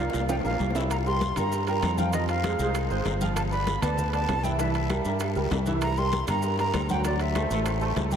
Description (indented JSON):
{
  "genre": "latin, salsa",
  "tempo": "196 BPM",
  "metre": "4/4",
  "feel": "straight",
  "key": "unclear",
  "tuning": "A4 = 440 Hz",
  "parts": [
    { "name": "reedy jazz flute", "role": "melody", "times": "0.0-7.8 s", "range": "D5 to C6", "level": "-30 LUFS", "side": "right 1 dB", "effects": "diffuse ambient delay" },
    { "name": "clear baby grand piano", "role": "accompaniment", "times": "0.0-8.2 s", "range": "E3 to E6", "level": "-29 LUFS", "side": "right 2 dB", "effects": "ensemble chorus" },
    { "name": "fingered electric bass", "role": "bass", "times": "0.0-8.2 s", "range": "G1 to G2", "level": "-28 LUFS", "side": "equal", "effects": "none" },
    { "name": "bongos", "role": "percussion", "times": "0.1-8.2 s", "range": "none", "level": "-38 LUFS", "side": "left 7 dB", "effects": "none" },
    { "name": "congas", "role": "percussion", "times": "0.1-8.2 s", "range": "none", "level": "-35 LUFS", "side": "left 2 dB", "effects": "none" },
    { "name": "guiro", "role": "percussion", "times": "0.1-8.2 s", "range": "none", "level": "-43 LUFS", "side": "left 7 dB", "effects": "none" },
    { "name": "maracas", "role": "percussion", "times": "0.1-8.2 s", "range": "none", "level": "-46 LUFS", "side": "right 5 dB", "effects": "none" },
    { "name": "timbales", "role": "percussion", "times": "0.1-8.1 s", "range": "none", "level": "-37 LUFS", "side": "right 5 dB", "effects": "none" },
    { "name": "claves", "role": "percussion", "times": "0.3-7.8 s", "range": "none", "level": "-48 LUFS", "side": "equal", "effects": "none" }
  ],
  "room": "wet huge ambient reverb, RT60 8.2 s",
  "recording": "dreamy mix soaked in reverb",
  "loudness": "-24 LUFS",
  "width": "side -8 dB against mid",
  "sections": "0.9-8.2 A section",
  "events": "drum fill 0.0-0.9",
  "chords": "0.0 C7sus4; 0.9 C5; 2.1 Fm; 3.4 G7; 4.6 C7; 7.0 D7"
}